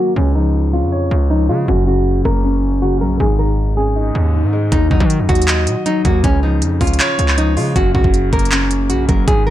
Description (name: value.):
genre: hip hop, trap.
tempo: 158 BPM.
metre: 4/4.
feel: half-time.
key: unclear.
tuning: A4 = 440 Hz.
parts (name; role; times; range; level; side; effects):
nylon-string guitar; melody; 0.0-9.5 s; Db4 to Bb4; -20 LUFS; equal; low-pass filter.
dark grand piano; accompaniment; 0.0-9.5 s; Gb2 to Eb5; -19 LUFS; left 2 dB; low-pass filter.
distorted 808-style bass; bass; 0.2-9.5 s; Gb1 to Eb3; -16 LUFS; equal; distortion.
trap drum kit; drums; 4.7-9.4 s; handclaps, hi-hat, kick drum; -17 LUFS; right 1 dB; overdrive, vintage 12-bit sampler grit.
room: digital ambience.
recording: none.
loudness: -13 LUFS.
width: side -13 dB against mid.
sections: 0.0-9.5 A section.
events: filter sweep 0.0-4.7.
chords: 0.2 Db; 1.7 Gb; 3.2 Absus4; 4.7 Ebm; 6.2 Db; 7.8 Gb.